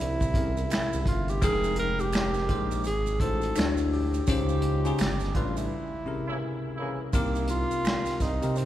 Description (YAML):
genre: R&B, neo-soul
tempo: 84 BPM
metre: 4/4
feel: swing 61% on 16ths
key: unclear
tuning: A4 = 440 Hz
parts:
  - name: breathy tenor saxophone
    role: melody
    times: 0.0-8.7 s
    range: Bb3 to Bb4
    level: -31 LUFS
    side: right 1 dB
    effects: none
  - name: smooth synth bass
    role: bass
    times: 0.0-8.7 s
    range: F1 to C3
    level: -31 LUFS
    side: equal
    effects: none
  - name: unplugged drum kit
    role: drums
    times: 0.0-8.7 s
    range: finger snaps, hi-hat, kick drum, snare drum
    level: -30 LUFS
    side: equal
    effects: none
  - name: maracas and finger snaps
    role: percussion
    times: 0.0-8.7 s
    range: none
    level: -44 LUFS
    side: right 5 dB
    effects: none
  - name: bell-like tine electric piano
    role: accompaniment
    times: 0.3-8.7 s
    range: C3 to G5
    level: -31 LUFS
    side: left 3 dB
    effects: phaser
  - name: clear horn section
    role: stabs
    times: 6.3-7.0 s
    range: Db3 to E4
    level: -39 LUFS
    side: equal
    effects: none
room: wet cathedral reverb, RT60 4.2 s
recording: recorded in a church or concert hall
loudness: -25 LUFS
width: side -12 dB against mid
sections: 0.0-7.1 A section; 7.1-8.7 B section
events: band accent 4.3-7.1; break 5.7-7.1; tenor saxophone solo 7.1-8.7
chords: 0.0 C7b9b13; 1.4 Fm11; 2.8 Ab7b9; 3.6 Dmaj9; 4.3 Dbmaj9; 5.0 G9; 5.7 C7b9b13; 7.1 Cm7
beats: 0.70 | 1.42 2.13 2.85 3.56 | 4.28 4.99 5.70 6.42 | 7.13 7.85 8.56